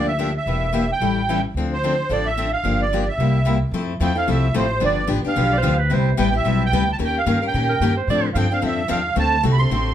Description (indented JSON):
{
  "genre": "acoustic string swing (jazz manouche)",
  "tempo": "221 BPM",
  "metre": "4/4",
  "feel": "swing 56% on 8ths",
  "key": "D minor",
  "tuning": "A4 = 441 Hz",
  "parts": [
    { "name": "musette accordion", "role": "melody", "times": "0.0-9.9 s", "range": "C5 to C6", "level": "-22 LUFS", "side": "right 3 dB", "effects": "none" },
    { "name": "picked steel-string acoustic guitar", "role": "accompaniment", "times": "0.0-9.9 s", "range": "C3 to Bb4", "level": "-22 LUFS", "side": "left 4 dB", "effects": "none" },
    { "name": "upright bass", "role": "bass", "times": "0.0-9.9 s", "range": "E1 to Bb2", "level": "-22 LUFS", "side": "equal", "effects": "none" },
    { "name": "clear clarinet", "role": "second line", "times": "5.5-8.3 s", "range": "Bb4 to D5", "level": "-24 LUFS", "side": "right 4 dB", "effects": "none" }
  ],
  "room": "wet studio ambience, RT60 0.5 s",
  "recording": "heard from further back in the room",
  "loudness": "-17 LUFS",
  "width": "side -10 dB against mid",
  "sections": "0.0-3.7 A section; 3.7-9.9 B section",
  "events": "none",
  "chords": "0.5 Em7b5; 1.0 A7; 1.6 Dm7; 2.6 Gm7; 3.2 C7; 3.7 Fmaj7; 4.8 G7; 5.9 Cmaj7; 7.0 Eb7; 8.1 Dm7; 9.2 D7"
}